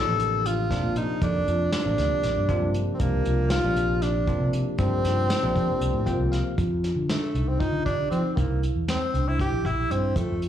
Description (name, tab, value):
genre	progressive instrumental, band music in an uneven meter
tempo	235 BPM (eighths)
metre	7/8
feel	straight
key	unclear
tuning	A4 = 440 Hz
part	warm tenor saxophone	melody	0.0-10.4 s	A3 to A4	-27 LUFS	equal	slapback echo, digital delay
part	bell-like tine electric piano	accompaniment	0.0-6.6 s	C3 to G5	-30 LUFS	left 2 dB	slapback echo
part	vibraphone with soft mallets	arpeggios	0.0-10.5 s	C4 to A4	-32 LUFS	equal	slapback echo, digital delay
part	fretless electric bass	bass	0.1-10.5 s	A1 to F3	-26 LUFS	equal	none
part	vintage brush drum kit	drums	0.2-10.5 s	hi-hat, kick drum, snare drum	-30 LUFS	equal	none
room	light reverb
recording	live gig heard through the venue's PA, club reverb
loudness	-22 LUFS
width	side -10 dB against mid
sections	0.0-6.6 A section; 6.6-10.5 B section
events	tine electric piano fill 5.8-6.6; tenor saxophone solo 6.6-10.5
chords	0.0 Bbmaj7; 3.0 C9sus4; 6.6 Fsus2; 8.4 C7